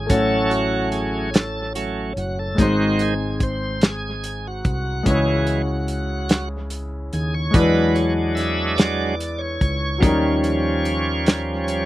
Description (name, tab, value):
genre	slow gospel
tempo	48 BPM (dotted quarters)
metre	6/8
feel	straight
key	C# harmonic minor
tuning	A4 = 440 Hz
part	clear concert grand piano	accompaniment	0.0-11.9 s	G#2 to C#5	-23 LUFS	left 2 dB	none
part	bright tonewheel organ	sustained chords	0.0-11.9 s	D#3 to E5	-23 LUFS	right 2 dB	slow rotary speaker, overdrive
part	fingered electric bass	bass	0.0-11.9 s	F#1 to E2	-26 LUFS	equal	none
part	warm soul drum kit	drums	0.1-11.9 s	hi-hat, kick drum, snare drum	-20 LUFS	equal	none
room	little or no reverb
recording	recorded outdoors, with no room sound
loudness	-18 LUFS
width	side -15 dB against mid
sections	0.0-11.9 A section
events	tonewheel organ solo 0.0-11.9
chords	0.1 F#m/A; 2.6 G#; 5.1 C#m; 7.5 E7; 10.0 D#7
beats	| 0.10 1.34 | 2.58 3.82 | 5.07 6.30 | 7.54 8.79 | 10.02 11.26